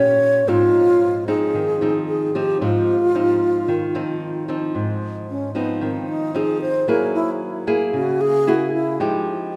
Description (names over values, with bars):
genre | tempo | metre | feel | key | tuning
bossa nova | 113 BPM | 4/4 | straight | Ab major | A4 = 443 Hz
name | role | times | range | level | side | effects
breathy wooden-headed alto flute | melody | 0.0-9.6 s | Cb4 to Db5 | -21 LUFS | equal | none
nylon-string guitar | accompaniment | 0.0-9.6 s | Ab2 to Ab4 | -24 LUFS | equal | none
room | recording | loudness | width
wet church reverb, RT60 2.8 s | recorded in a church or concert hall | -20 LUFS | mono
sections
0.0-4.7 A section; 4.7-9.6 B section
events
alto flute solo 4.7-9.6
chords
0.5 Ab6; 6.9 Gb9; 9.0 Fm9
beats
| 0.47 1.01 1.54 2.07 | 2.60 3.14 3.67 4.20 | 4.73 5.27 5.80 6.33 | 6.86 7.39 7.93 8.46 | 8.99 9.52